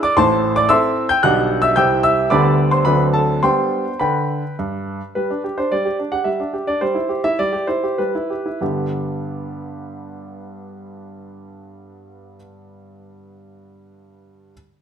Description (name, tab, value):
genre	classical-period piano sonatina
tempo	92-113 BPM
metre	3/4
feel	rubato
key	G major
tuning	A4 = 440 Hz
part	clear grand piano	solo	0.0-14.5 s	A1 to G6	-16 LUFS	equal	none
room	moderate recital hall reverb, RT60 1.3 s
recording	close, detailed microphones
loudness	-16 LUFS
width	side -8 dB against mid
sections	0.0-5.2 A section; 5.2-8.6 B section; 8.6-12.3 C section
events	slowing down 4.3-8.6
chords	0.2 Am; 1.2 G/B; 1.8 C; 2.3 G/D; 2.9 D7; 3.4 G; 5.2 G5; 6.8 G6; 8.6 G